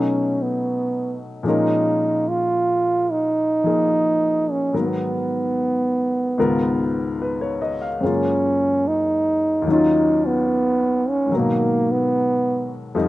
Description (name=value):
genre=jazz ballad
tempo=73 BPM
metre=4/4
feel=swing 68% on 8ths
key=unclear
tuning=A4 = 441 Hz
part: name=breathy trombone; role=melody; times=0.0-13.1 s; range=A3 to E#4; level=-19 LUFS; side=right 2 dB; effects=none
part: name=clear grand piano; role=accompaniment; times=0.0-13.1 s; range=C#2 to E#5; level=-23 LUFS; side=left 3 dB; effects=slapback echo
room=little or no reverb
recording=recorded outdoors, with no room sound, nothing above 10.7 kHz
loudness=-18 LUFS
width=side -16 dB against mid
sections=0.0-13.1 A section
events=none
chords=0.0 B9; 1.4 A#m7; 4.7 G#m9; 6.4 C#13; 8.0 F#maj9; 9.7 D#m9; 11.3 G#m9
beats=0.62 | 1.44 2.26 3.09 3.91 | 4.73 5.55 6.37 7.19 | 8.01 8.84 9.66 10.48 | 11.30 12.12 12.95